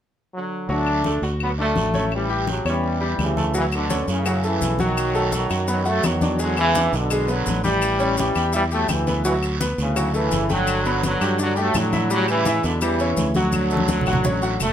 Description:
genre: latin, salsa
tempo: 168 BPM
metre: 4/4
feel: straight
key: D major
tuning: A4 = 440 Hz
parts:
  - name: brilliant trombone section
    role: melody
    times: 0.3-14.7 s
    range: A2 to D4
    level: -22 LUFS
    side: equal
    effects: none
  - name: bright concert grand piano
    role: accompaniment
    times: 0.7-14.7 s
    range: F#3 to G5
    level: -26 LUFS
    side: left 1 dB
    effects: none
  - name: fingered electric bass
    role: bass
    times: 0.7-14.7 s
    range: E1 to A2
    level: -24 LUFS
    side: equal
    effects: none
  - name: congas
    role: percussion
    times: 0.7-14.7 s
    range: none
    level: -27 LUFS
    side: left 2 dB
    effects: none
  - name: guiro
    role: percussion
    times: 0.7-14.7 s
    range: none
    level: -33 LUFS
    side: right 6 dB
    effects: none
  - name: claves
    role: percussion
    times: 0.9-14.7 s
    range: none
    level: -33 LUFS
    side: left 9 dB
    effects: none
  - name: maracas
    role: percussion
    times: 3.5-14.7 s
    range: none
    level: -34 LUFS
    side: left 4 dB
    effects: none
room: moderate studio reverb, RT60 0.7 s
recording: minimal, uncompressed stereo recording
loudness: -19 LUFS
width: side -9 dB against mid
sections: 0.7-3.5 A section; 3.5-14.7 B section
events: drum fill 13.5-14.7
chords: 0.0 N.C.; 0.7 D; 2.1 A7; 3.5 Dmaj7; 5.0 B7; 6.4 E7; 7.8 A7; 9.3 D6; 10.7 Gmaj7; 12.1 A7; 13.5 Dmaj7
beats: 0.34 | 0.69 1.05 1.41 1.76 | 2.12 2.48 2.83 3.19 | 3.54 3.90 4.26 4.61 | 4.97 5.33 5.68 6.04 | 6.40 6.75 7.11 7.47 | 7.82 8.18 8.54 8.89 | 9.25 9.61 9.96 10.32 | 10.68 11.04 11.39 11.75 | 12.11 12.46 12.82 13.18 | 13.54 13.89 14.25 14.61

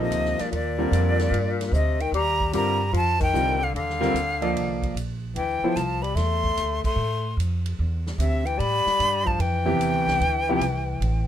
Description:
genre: modal jazz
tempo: 148 BPM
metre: 4/4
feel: swing 66% on 8ths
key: unclear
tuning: A4 = 440 Hz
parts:
  - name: breathy bright jazz flute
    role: melody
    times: 0.0-11.3 s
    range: D5 to C6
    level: -26 LUFS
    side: equal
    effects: none
  - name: breathy tenor saxophone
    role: second line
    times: 0.0-11.3 s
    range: Bb2 to A3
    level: -29 LUFS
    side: left 6 dB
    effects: none
  - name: clear grand piano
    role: accompaniment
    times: 0.0-5.8, 9.7-10.6 s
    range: C3 to Eb5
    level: -26 LUFS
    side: right 1 dB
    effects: none
  - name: upright bass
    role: bass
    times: 0.0-11.3 s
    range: A1 to A2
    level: -26 LUFS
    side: right 1 dB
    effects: none
  - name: vintage drum kit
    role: drums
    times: 0.1-11.1 s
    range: crash cymbal, hi-hat, kick drum, ride cymbal, snare drum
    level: -34 LUFS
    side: right 1 dB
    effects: none
room: light reverb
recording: minimal, uncompressed stereo recording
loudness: -21 LUFS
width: side -10 dB against mid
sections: 0.0-11.3 A section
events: band accent 3.1, 6.8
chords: 0.0 Cm11; 5.4 Dm11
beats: 0.11 | 0.52 0.92 1.32 1.73 | 2.13 2.53 2.94 3.34 | 3.75 4.15 4.55 4.96 | 5.36 5.76 6.17 6.57 | 6.98 7.38 7.79 8.19 | 8.60 9.00 9.40 9.81 | 10.21 10.62 11.02

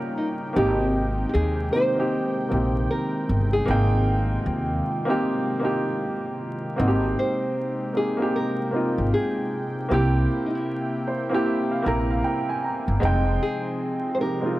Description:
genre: lo-fi hip hop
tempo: 77 BPM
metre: 4/4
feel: swing 61% on 16ths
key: Ab major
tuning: A4 = 439 Hz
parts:
  - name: small celesta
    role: second line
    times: 0.0-0.5 s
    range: Db5 to Bb5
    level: -45 LUFS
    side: left 1 dB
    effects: none
  - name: dark upright piano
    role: accompaniment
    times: 0.0-14.6 s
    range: Ab3 to Bb5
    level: -25 LUFS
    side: right 1 dB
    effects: low-pass filter
  - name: warm analog pad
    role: sustained chords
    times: 0.0-14.6 s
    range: C3 to G5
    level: -31 LUFS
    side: equal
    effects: chorus, low-pass filter
  - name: nylon-string guitar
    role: melody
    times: 0.2-14.6 s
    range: Eb4 to C5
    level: -28 LUFS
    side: equal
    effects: low-pass filter
  - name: upright bass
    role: bass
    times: 0.6-13.4 s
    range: F1 to Eb2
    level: -23 LUFS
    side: equal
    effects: none
room: light reverb, small room ambience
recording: vinyl crackle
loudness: -21 LUFS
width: side -16 dB against mid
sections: 0.0-6.8 A section; 6.8-14.6 B section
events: none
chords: 0.0 Eb7; 0.6 Abmaj7; 9.9 C7; 13.0 Fm9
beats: | 0.56 1.34 2.12 2.90 | 3.68 4.46 5.24 6.01 | 6.79 7.57 8.35 9.13 | 9.91 10.69 11.47 12.25 | 13.03 13.81 14.59

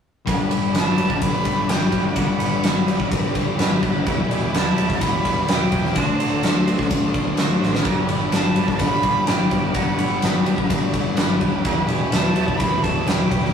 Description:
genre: rock, shoegaze and dream pop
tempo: 127 BPM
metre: 4/4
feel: straight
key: G major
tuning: A4 = 440 Hz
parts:
  - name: string machine, cellos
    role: sustained chords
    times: 0.3-13.5 s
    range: G4 to D6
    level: -30 LUFS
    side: right 2 dB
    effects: ensemble chorus
  - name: biting overdriven guitar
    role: riff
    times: 0.3-13.5 s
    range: D3 to C5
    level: -28 LUFS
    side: right 8 dB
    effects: none
  - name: thick fuzz guitar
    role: riff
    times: 0.3-13.5 s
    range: E2 to D4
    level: -24 LUFS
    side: left 4 dB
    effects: distortion
  - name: growling fingered electric bass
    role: bass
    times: 0.3-13.5 s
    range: E1 to Eb2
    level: -29 LUFS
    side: equal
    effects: overdrive
  - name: huge arena drum kit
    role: drums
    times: 0.3-13.5 s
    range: kick drum, ride cymbal, snare drum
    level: -20 LUFS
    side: equal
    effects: none
  - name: breathy bright jazz flute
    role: melody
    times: 0.7-13.5 s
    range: F#5 to B5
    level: -26 LUFS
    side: right 2 dB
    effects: none
  - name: tambourine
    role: percussion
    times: 8.3-13.2 s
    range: none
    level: barely audible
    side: none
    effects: none
room: wet studio ambience, RT60 0.5 s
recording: rough rehearsal-room recording, tube saturation, studio reverb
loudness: -17 LUFS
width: side -7 dB against mid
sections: 0.3-13.5 A section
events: drum fill 7.6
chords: 0.3 Gmaj7; 4.1 Em7; 6.0 D7; 7.9 Gmaj7; 11.7 Em7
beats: | 0.28 0.75 1.22 1.70 | 2.17 2.64 3.12 3.59 | 4.07 4.54 5.01 5.49 | 5.96 6.43 6.91 7.38 | 7.86 8.33 8.80 9.28 | 9.75 10.23 10.70 11.18 | 11.65 12.13 12.60 13.08

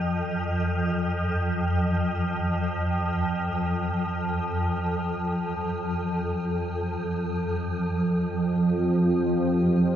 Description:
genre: dark ambient drone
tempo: free time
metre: none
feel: none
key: unclear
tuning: A4 = 442 Hz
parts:
  - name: swarming drone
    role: drone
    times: 0.0-10.0 s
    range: F2 to F3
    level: -25 LUFS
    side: equal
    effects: built-in reverb
  - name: sweeping resonant pad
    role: sustained chords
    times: 7.6-10.0 s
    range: F3 to G4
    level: -23 LUFS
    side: right 2 dB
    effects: chorus
room: wet huge ambient reverb, RT60 8.3 s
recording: none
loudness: -24 LUFS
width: side -10 dB against mid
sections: 0.0-7.7 A section; 7.7-10.0 B section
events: none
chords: 0.0 N.C.; 7.7 Fsus2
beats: free time

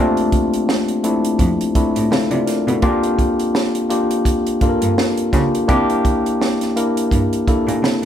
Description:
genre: lush 1970s-style soul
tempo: 84 BPM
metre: 4/4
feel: swing 58% on 16ths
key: unclear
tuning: A4 = 440 Hz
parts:
  - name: tine electric piano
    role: accompaniment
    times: 0.0-8.1 s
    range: A3 to F5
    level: -17 LUFS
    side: left 1 dB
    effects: none
  - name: rich cello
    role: bass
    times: 0.0-8.1 s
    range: F2 to Db3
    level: -22 LUFS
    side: right 1 dB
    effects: none
  - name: compact cocktail drum kit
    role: drums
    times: 0.2-8.0 s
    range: hi-hat, kick drum, snare drum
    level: -20 LUFS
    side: right 1 dB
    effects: none
room: moderate large studio reverb, RT60 1.0 s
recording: band playing live in one room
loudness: -15 LUFS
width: side -10 dB against mid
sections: 0.0-8.1 A section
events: none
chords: 0.0 Bbmaj7; 2.8 Gm11; 5.7 C7 (rootless)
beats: 0.69 1.40 2.12 | 2.83 3.54 4.26 4.97 | 5.69 6.40 7.12 7.83

